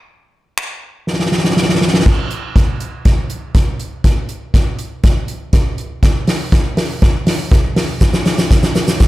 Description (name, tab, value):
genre	pop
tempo	121 BPM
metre	4/4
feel	straight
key	none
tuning	none
part	soft-mallet drum kit	drums	0.6-9.1 s	crash cymbal, finger snaps, hi-hat, kick drum, shaker, snare drum	-12 LUFS	equal	none
room	little or no reverb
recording	dry, gritty hardware recording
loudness	-13 LUFS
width	side -17 dB against mid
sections	0.0-2.1 A section; 2.1-9.1 B section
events	drum fill 1.1-2.1, 2.1-9.1; build-up 2.1-9.1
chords	none